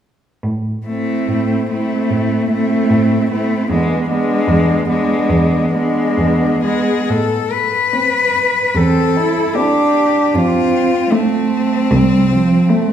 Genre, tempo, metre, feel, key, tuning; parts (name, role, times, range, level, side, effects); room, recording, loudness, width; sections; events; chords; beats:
classical, lyrical piece for cello ensemble; 73 BPM; 4/4; uneven beats, rubato; A minor; A4 = 440 Hz
rich cello; bass; 0.4-12.5 s; C2 to A2; -19 LUFS; right 1 dB
warm cello; melody; 0.9-12.9 s; C4 to B4; -18 LUFS; left 4 dB
dark cello; second line; 0.9-12.9 s; F3 to E4; -17 LUFS; right 4 dB
rich cello; accompaniment; 0.9-12.9 s; G#3 to C4; -18 LUFS; left 1 dB
wet recital hall reverb, RT60 1.5 s; heard from further back in the room; -13 LUFS; side -9 dB against mid
0.4-7.1 A section; 7.1-12.9 B section
0.4 Am; 3.7 E7; 7.1 Am; 10.3 F
| 0.45 1.29 2.11 2.91 | 3.71 4.48 5.31 6.18 | 7.10 7.93 8.75 9.55 | 10.34 11.12 11.91 12.70